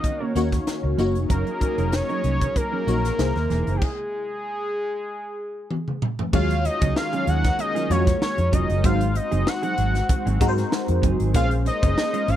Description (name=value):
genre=polished 1980s jazz-funk pop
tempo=96 BPM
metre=4/4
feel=swing 54% on 16ths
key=unclear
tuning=A4 = 438 Hz
part: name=fat analog lead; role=melody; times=0.0-12.4 s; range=G4 to Gb5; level=-26 LUFS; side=equal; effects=slapback echo
part: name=FM electric piano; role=accompaniment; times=0.0-12.4 s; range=Ab3 to Db5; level=-27 LUFS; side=left 3 dB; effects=phaser, ensemble chorus
part: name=lush unison pad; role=sustained chords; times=0.0-12.4 s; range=C3 to F5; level=-34 LUFS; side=left 1 dB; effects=chorus
part: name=mellow electric guitar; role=riff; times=0.0-12.4 s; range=E3 to C5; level=-29 LUFS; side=right 8 dB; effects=analog chorus
part: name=crisp fusion drum kit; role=drums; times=0.0-12.4 s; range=crash cymbal, hi-hat, kick drum, snare drum, toms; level=-24 LUFS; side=equal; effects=none
part: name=vintage muted fingered electric bass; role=bass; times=0.4-12.4 s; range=E1 to Ab2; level=-23 LUFS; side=equal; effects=none
room=little or no reverb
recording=none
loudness=-20 LUFS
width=side -11 dB against mid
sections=0.0-6.3 A section; 6.3-12.4 B section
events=stop 3.8-6.3; drum fill 5.7-6.3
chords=0.0 Ebm7; 1.0 Gb6; 3.2 C7alt; 3.8 N.C.; 6.3 Ebm11; 8.8 Ab7; 11.3 Bbm9